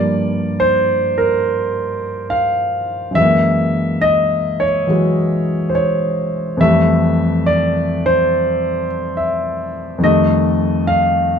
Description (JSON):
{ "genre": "solo jazz", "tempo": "70 BPM", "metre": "4/4", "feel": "swing 69% on 8ths", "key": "unclear", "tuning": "A4 = 440 Hz", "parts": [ { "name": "warm concert grand piano", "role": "solo", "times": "0.0-11.4 s", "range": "F2 to F5", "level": "-14 LUFS", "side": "equal", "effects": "none" } ], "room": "moderate studio reverb, RT60 0.9 s", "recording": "dark, warm production", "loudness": "-14 LUFS", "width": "side -7 dB against mid", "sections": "0.0-11.4 A section", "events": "none", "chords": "0.0 Gm7; 3.2 F#9; 6.6 Fmaj9; 10.0 F9" }